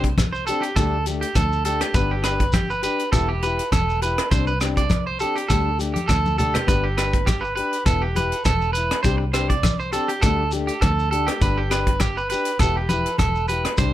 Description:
highlife guitar band; 101 BPM; 4/4; swing 54% on 16ths; G major; A4 = 440 Hz
fingerpicked plugged-in steel-string acoustic guitar; accompaniment; 0.0-13.9 s; G3 to G4; -28 LUFS; left 7 dB
electric guitar at the edge of break-up; arpeggios; 0.0-13.9 s; G4 to D5; -24 LUFS; right 3 dB; tape echo
fingered electric bass; bass; 0.0-13.9 s; E1 to D2; -25 LUFS; equal
tight funk drum kit; drums; 0.0-13.9 s; hi-hat, kick drum, rim click; -24 LUFS; equal
congas; percussion; 0.2-13.9 s; -27 LUFS; left 2 dB
shekere; percussion; 0.2-13.9 s; -29 LUFS; left 1 dB
little or no reverb; -19 LUFS; side -13 dB against mid
0.0-13.9 A section
drum fill 5.9-6.7
0.0 Csus2; 0.8 Dsus4; 2.0 G; 3.1 Em; 4.3 Csus2; 5.5 Dsus4; 6.7 G; 7.9 Em; 9.1 Csus2; 10.2 Dsus4; 11.4 G; 12.6 Em

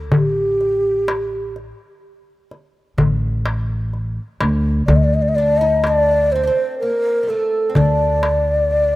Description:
Arabic maqam ensemble; 126 BPM (eighths); 10/8; straight; D maqam hijaz; A4 = 440 Hz
upright bass; bass; 0.0-9.0 s; A1 to D2; -20 LUFS; equal
breathy mellow ney; melody; 0.1-9.0 s; G4 to Eb5+33c; -17 LUFS; equal
darbuka; percussion; 0.1-8.8 s; -18 LUFS; left 1 dB
oud; second line; 5.4-9.0 s; G3 to Eb4+25c; -26 LUFS; right 3 dB
light reverb; rough home demo mix; -15 LUFS; side -17 dB against mid
0.0-9.0 A section

